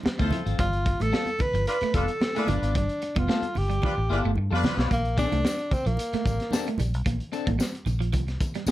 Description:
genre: funk.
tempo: 111 BPM.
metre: 4/4.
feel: straight.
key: unclear.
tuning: A4 = 439 Hz.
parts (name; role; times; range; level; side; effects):
congas; percussion; 0.0-8.7 s; none; -36 LUFS; right 4 dB; none.
clean electric guitar; riff; 0.1-8.7 s; F3 to B3; -33 LUFS; right 5 dB; wide subtle chorus.
vintage muted fingered electric bass; bass; 0.1-8.7 s; F1 to G2; -27 LUFS; equal; none.
crunchy breakbeat drum kit; drums; 0.1-8.7 s; hi-hat, kick drum, snare drum; -28 LUFS; equal; none.
warm horn section; second line; 0.2-4.9 s; D4 to C5; -32 LUFS; left 1 dB; none.
clean electric guitar; accompaniment; 0.2-8.7 s; F3 to B4; -32 LUFS; left 6 dB; none.
breathy tenor saxophone; melody; 0.6-6.8 s; Bb3 to B4; -29 LUFS; equal; none.
tambourine; percussion; 4.9-8.7 s; none; -43 LUFS; left 5 dB; none.
room: light reverb.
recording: dark, warm production.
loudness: -23 LUFS.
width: side -15 dB against mid.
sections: 0.0-4.9 A section; 4.9-8.7 B section.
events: tenor saxophone solo 0.0-4.9; drum fill 3.8-4.9.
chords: 0.0 Dm9; 0.6 G9; 4.9 Bbmaj9.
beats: 0.06 | 0.59 1.13 1.67 2.21 | 2.75 3.29 3.83 4.37 | 4.91 5.44 5.98 6.52 | 7.06 7.60 8.13 8.67.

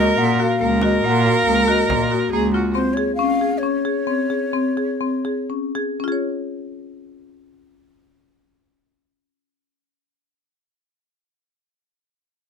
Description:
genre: contemporary instrumental, chamber music in an uneven meter.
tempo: 115-140 BPM.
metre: 7/4.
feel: straight.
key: Db major.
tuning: A4 = 440 Hz.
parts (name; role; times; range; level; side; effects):
breathy mellow jazz flute; melody; 0.0-5.5 s; C5 to Gb5; -24 LUFS; left 2 dB; none.
rich viola; second line; 0.0-2.7 s; Gb4 to Bb4; -20 LUFS; right 4 dB; none.
marimba with medium hard mallets; arpeggios; 0.0-10.4 s; Bb3 to Db5; -21 LUFS; left 4 dB; none.
warm cello; bass; 0.0-2.7 s; Db2 to Bb2; -21 LUFS; right 4 dB; none.
frame drum; percussion; 0.8-2.4 s; none; -29 LUFS; left 1 dB; none.
room: little or no reverb.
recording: close, detailed microphones.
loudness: -17 LUFS.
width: side -6 dB against mid.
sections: 0.0-6.0 A section; 6.0-9.6 B section.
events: slowing down 2.3-6.0.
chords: 0.0 Ebm/Db; 2.8 Dbmaj7(no3); 6.0 Db.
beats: 0.18 0.61 1.04 1.47 1.90 2.32 | 2.75 3.18 3.62 4.07 4.53 5.00 5.49 | 6.00 6.52 7.04 7.56 8.08 8.60 9.12.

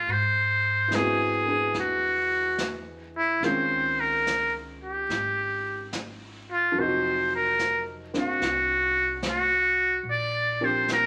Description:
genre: jazz ballad.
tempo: 72 BPM.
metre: 4/4.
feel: swing 67% on 8ths.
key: unclear.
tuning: A4 = 440 Hz.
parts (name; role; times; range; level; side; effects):
trumpet with metal mute; melody; 0.0-11.1 s; E4 to D5; -26 LUFS; equal; none.
warm upright piano; accompaniment; 0.0-11.1 s; Eb3 to F5; -34 LUFS; equal; none.
upright bass; bass; 0.0-11.1 s; F1 to Ab2; -40 LUFS; equal; none.
jazz brush drum kit; drums; 0.1-11.1 s; brushed snare drum, hi-hat, snare drum; -38 LUFS; equal; none.
room: moderate large studio reverb, RT60 1.1 s.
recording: vinyl crackle.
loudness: -25 LUFS.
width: mono.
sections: 0.0-11.1 A section.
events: none.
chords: 0.1 Ab7alt; 3.4 Dbmaj7; 6.7 F5; 10.0 Bb69.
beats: | 0.08 0.91 1.75 2.59 | 3.43 4.26 5.09 5.92 | 6.75 7.58 8.40 9.22 | 10.04 10.87.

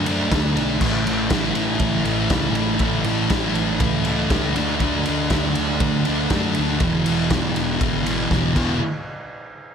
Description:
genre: garage rock duo or trio.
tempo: 120 BPM.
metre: 4/4.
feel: straight.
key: unclear.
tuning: A4 = 440 Hz.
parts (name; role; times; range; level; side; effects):
thick fuzz guitar; riff; 0.0-8.8 s; E2 to D4; -20 LUFS; equal; distortion.
growling picked electric bass; bass; 0.0-8.8 s; E1 to F#2; -27 LUFS; equal; overdrive.
raw garage drum kit; drums; 0.1-8.7 s; crash cymbal, kick drum, ride cymbal, snare drum; -24 LUFS; equal; none.
room: light reverb, studio reverb.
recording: none.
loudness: -18 LUFS.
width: side -7 dB against mid.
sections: 0.0-8.8 A section.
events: drum fill 8.3-8.8.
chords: 0.0 D; 0.8 A; 4.6 D5; 6.8 E; 8.6 E5; 8.8 N.C..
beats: 0.32 | 0.82 1.32 1.82 2.32 | 2.82 3.32 3.82 4.32 | 4.82 5.32 5.82 6.32 | 6.82 7.32 7.82 8.32.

